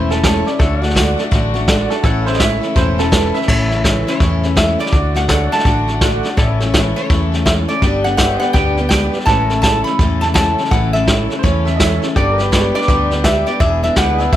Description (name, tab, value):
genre	honky-tonk and classic country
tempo	166 BPM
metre	4/4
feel	swing 63% on 8ths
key	A major, A mixolydian from 3.5 s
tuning	A4 = 440 Hz
part	bright upright piano	second line	0.0-3.5, 11.4-12.1 s	A4 to E5	-21 LUFS	right 4 dB	none
part	picked steel-string acoustic guitar	accompaniment	0.0-14.4 s	E2 to A4	-21 LUFS	left 4 dB	none
part	pedal steel guitar	sustained chords	0.0-14.4 s	E4 to F#5	-26 LUFS	left 1 dB	none
part	warm chamber string section	sustained chords	0.0-14.4 s	C#3 to G4	-28 LUFS	left 2 dB	none
part	hollow-body short-scale picked electric bass	bass	0.0-14.4 s	E1 to E2	-19 LUFS	equal	none
part	vintage brush drum kit	drums	0.1-14.4 s	crash cymbal, hi-hat, kick drum, snare drum	-16 LUFS	equal	none
part	mellow tonewheel organ	accompaniment	0.2-14.3 s	E4 to F#5	-25 LUFS	right 5 dB	slow rotary speaker
part	lap resonator guitar	melody	3.5-14.4 s	B4 to B5	-19 LUFS	right 1 dB	none
room	light reverb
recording	none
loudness	-12 LUFS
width	side -12 dB against mid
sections	0.0-3.5 A section; 3.5-14.4 B section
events	upright piano solo 0.0-3.5; tonewheel organ fill 5.8-6.4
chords	0.0 A; 0.6 D; 2.0 A; 4.9 D; 6.4 A; 7.8 G; 9.3 A; 12.2 G; 13.6 E7